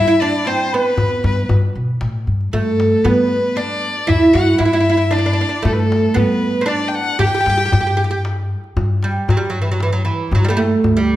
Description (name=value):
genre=Persian modal ensemble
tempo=116 BPM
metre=3/4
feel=straight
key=G dastgah mahur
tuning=A4 = 440 Hz
part: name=oud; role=melody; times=0.0-11.2 s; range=E3 to G4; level=-16 LUFS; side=right 2 dB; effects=none
part: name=clear violin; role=second line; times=0.0-8.2 s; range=A4 to G5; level=-20 LUFS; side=left 4 dB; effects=none
part: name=upright bass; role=bass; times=0.0-11.2 s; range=D2 to G3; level=-20 LUFS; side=left 1 dB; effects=none
part: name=tombak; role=percussion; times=0.4-11.2 s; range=none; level=-21 LUFS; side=left 2 dB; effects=none
room=moderate recital hall reverb, RT60 1.6 s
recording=none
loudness=-14 LUFS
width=side -14 dB against mid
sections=0.0-8.8 A section; 8.8-11.2 B section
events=none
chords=none